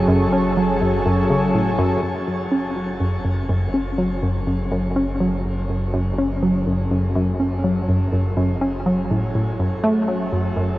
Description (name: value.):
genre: ambient, sequencer-driven space music.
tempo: 123 BPM.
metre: 4/4.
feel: straight.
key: F# minor.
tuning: A4 = 438 Hz.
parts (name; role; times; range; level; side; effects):
lush unison pad; sustained chords; 0.0-10.8 s; F#3 to A4; -24 LUFS; equal; chorus.
analog pluck; riff; 0.0-10.8 s; F#2 to C#4; -20 LUFS; equal; chorus, tape echo.
fat analog bass; bass; 0.0-10.8 s; F#1; -28 LUFS; equal; none.
bubbling stepped-filter texture; texture; 0.0-2.0 s; C#6; -37 LUFS; right 1 dB; chorus, built-in reverb.
room: wet shimmer reverb, RT60 7.0 s.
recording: worn, warbling old tape, cassette tape, warbly pitch drift.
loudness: -18 LUFS.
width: side -16 dB against mid.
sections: 0.0-2.0 A section; 2.0-10.8 B section.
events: fade-in on analog synth pad 2.0-10.8.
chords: 0.0 F#m.